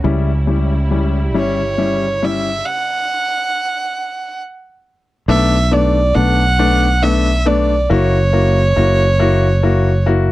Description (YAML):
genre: six-eight pop ballad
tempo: 46 BPM (dotted quarters)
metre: 6/8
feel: straight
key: B minor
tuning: A4 = 440 Hz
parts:
  - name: clear baby grand piano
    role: accompaniment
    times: 0.0-10.3 s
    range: G3 to F#4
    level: -18 LUFS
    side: left 4 dB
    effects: none
  - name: muted studio string section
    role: sustained chords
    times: 0.0-2.6 s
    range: C#3 to E4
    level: -27 LUFS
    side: right 2 dB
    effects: none
  - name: fingered electric bass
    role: bass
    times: 0.0-10.3 s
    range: F#1 to C#2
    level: -15 LUFS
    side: equal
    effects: none
  - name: dark violin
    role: melody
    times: 1.4-10.1 s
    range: C#5 to F#5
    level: -17 LUFS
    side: right 2 dB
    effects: none
room: little or no reverb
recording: dry, close 1970s-style studio recording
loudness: -13 LUFS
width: side -16 dB against mid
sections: 0.0-5.3 A section; 5.3-10.3 B section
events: stop 2.7-5.3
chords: 0.0 C#dim; 2.7 N.C.; 5.3 Bm7; 7.9 F#7